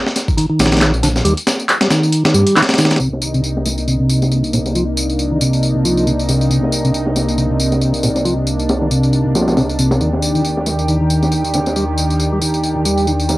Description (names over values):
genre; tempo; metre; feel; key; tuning
breakbeat, breaks; 137 BPM; 4/4; swing 57% on 16ths; C minor; A4 = 442 Hz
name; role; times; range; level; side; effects
breakbeat sampler-style drum kit; drums; 0.1-13.4 s; hi-hat, kick drum, snare drum; -18 LUFS; equal; low-pass filter on hats, low-pass filter on kick, low-pass filter on snare
electronic tambourine and handclaps; drums; 0.2-13.4 s; none; -22 LUFS; left 1 dB; none
percussive tonewheel organ; riff; 0.4-13.4 s; Bb2 to G3; -16 LUFS; equal; slow rotary speaker, low-pass filter, cassette tape, analog delay
dark detuned saw bass; bass; 0.6-13.4 s; Bb1 to G2; -21 LUFS; equal; none
lush unison pad; sustained chords; 3.0-13.4 s; C3 to G4; -19 LUFS; equal; chorus, vintage 12-bit sampler grit, sidechain pumping, cassette tape
room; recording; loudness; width
moderate booth ambience, RT60 0.2 s; home recording on cassette; -13 LUFS; side -18 dB against mid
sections
0.0-3.0 A section; 3.0-13.4 B section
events
band accent 2.6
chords
0.0 Eb; 3.0 Cm9; 10.0 Ebmaj7